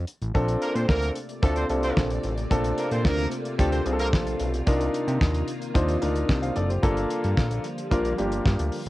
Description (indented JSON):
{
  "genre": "early-eighties boogie funk",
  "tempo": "111 BPM",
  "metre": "4/4",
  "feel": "straight",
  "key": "unclear",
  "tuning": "A4 = 440 Hz",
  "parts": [
    { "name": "fat analog bass", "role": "bass", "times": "0.0-8.9 s", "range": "F#1 to C3", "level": "-27 LUFS", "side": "equal", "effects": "none" },
    { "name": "damped 70s drum kit", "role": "drums", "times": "0.1-8.9 s", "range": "hi-hat, kick drum, snare drum", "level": "-25 LUFS", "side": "equal", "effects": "cassette tape" },
    { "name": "warm grand piano", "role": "accompaniment", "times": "0.3-8.8 s", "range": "Bb3 to F5", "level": "-27 LUFS", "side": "left 1 dB", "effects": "cassette tape" },
    { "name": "soft string machine", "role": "sustained chords", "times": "1.2-8.9 s", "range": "C3 to D5", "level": "-33 LUFS", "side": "equal", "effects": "ensemble chorus, cassette tape" },
    { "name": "clear horn section", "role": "second line", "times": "0.6-4.1 s", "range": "A3 to C5", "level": "-30 LUFS", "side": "right 2 dB", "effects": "cassette tape" }
  ],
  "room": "little or no reverb",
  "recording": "home recording on cassette",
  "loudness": "-22 LUFS",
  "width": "side -17 dB against mid",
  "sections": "0.3-8.9 A section",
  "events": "none",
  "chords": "0.3 Bbmaj9; 4.7 Cm11; 6.8 Gm7",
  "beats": "| 0.35 0.89 1.43 1.97 | 2.51 3.05 3.59 4.13 | 4.67 5.21 5.75 6.29 | 6.83 7.37 7.91 8.45"
}